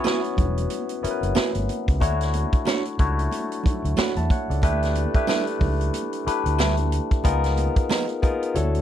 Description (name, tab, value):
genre	lush 1970s-style soul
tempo	92 BPM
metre	4/4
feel	swing 58% on 16ths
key	D major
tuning	A4 = 440 Hz
part	barky tine electric piano	accompaniment	0.0-8.8 s	A3 to B5	-26 LUFS	left 3 dB	phaser
part	electric guitar through a small old amp	riff	0.0-8.1 s	E#3 to C#5	-25 LUFS	right 7 dB	none
part	congas	percussion	0.0-8.7 s	none	-35 LUFS	right 5 dB	none
part	tambourine	percussion	0.0-8.1 s	none	-40 LUFS	left 20 dB	none
part	vintage drum kit	drums	0.1-8.8 s	hi-hat, kick drum, snare drum	-24 LUFS	equal	none
part	overdriven fingered electric bass	bass	0.4-8.8 s	E1 to E2	-24 LUFS	equal	none
room	little or no reverb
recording	dry, close 1970s-style studio recording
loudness	-20 LUFS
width	side -10 dB against mid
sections	0.0-8.8 A section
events	none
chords	0.0 F#7sus4; 2.0 Dmaj7; 4.6 G6; 7.2 C#13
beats	0.05 0.71 1.36 | 2.01 2.67 3.32 3.98 | 4.63 5.28 5.94 6.59 | 7.25 7.90 8.56